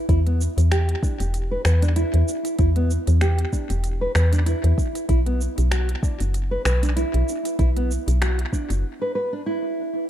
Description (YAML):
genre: organic downtempo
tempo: 96 BPM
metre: 4/4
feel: swing 56% on 16ths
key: unclear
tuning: A4 = 440 Hz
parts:
  - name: nylon-string guitar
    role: arpeggios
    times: 0.0-10.1 s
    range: B3 to B4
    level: -26 LUFS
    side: right 1 dB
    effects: analog delay
  - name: woody FM bass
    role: bass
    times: 0.1-8.8 s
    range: E1 to E2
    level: -19 LUFS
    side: equal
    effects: none
  - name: electronic kick drum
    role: drums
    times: 0.1-8.7 s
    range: none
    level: -22 LUFS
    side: equal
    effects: small room ambience
  - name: organic electronic drum kit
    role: drums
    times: 0.1-8.8 s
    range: finger snaps, hi-hat, shaker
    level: -31 LUFS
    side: equal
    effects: small room ambience, tape echo
room: light reverb, digital ambience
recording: echo-heavy mix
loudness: -19 LUFS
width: side -11 dB against mid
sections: 0.0-10.1 A section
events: break 8.8-10.1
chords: 0.1 E5; 5.1 B5